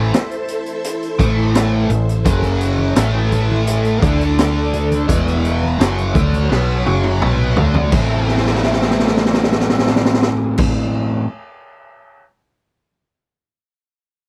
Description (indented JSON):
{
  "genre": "psychedelic rock",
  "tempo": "84 BPM",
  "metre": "4/4",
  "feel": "straight",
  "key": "A dorian",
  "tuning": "A4 = 440 Hz",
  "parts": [
    { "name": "string machine, full ensemble", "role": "sustained chords", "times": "0.0-10.7 s", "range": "A3 to F#5", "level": "-27 LUFS", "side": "equal", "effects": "phaser, ensemble chorus" },
    { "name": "biting overdriven guitar", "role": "riff", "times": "0.0-11.2 s", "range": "E2 to E4", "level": "-21 LUFS", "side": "equal", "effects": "flanger" },
    { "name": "hollow-body short-scale fingered electric bass", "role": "bass", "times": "0.0-10.7 s", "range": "E1 to D2", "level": "-21 LUFS", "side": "equal", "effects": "none" },
    { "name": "raw garage drum kit", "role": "drums", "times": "0.1-12.2 s", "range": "crash cymbal, hi-hat, kick drum, snare drum, toms", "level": "-20 LUFS", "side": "equal", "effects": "none" },
    { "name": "congas", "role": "percussion", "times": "2.4-10.7 s", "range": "none", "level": "-29 LUFS", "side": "equal", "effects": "none" }
  ],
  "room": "little or no reverb",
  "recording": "dry, close 1970s-style studio recording",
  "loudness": "-16 LUFS",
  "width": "mono",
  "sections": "0.0-7.9 A section; 7.9-10.8 B section",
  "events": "drum fill 6.5-7.9, 8.3-10.6",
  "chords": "0.0 Am; 2.3 F#5; 3.0 A5; 4.0 D5; 5.1 E5; 5.8 F#5; 7.9 Am"
}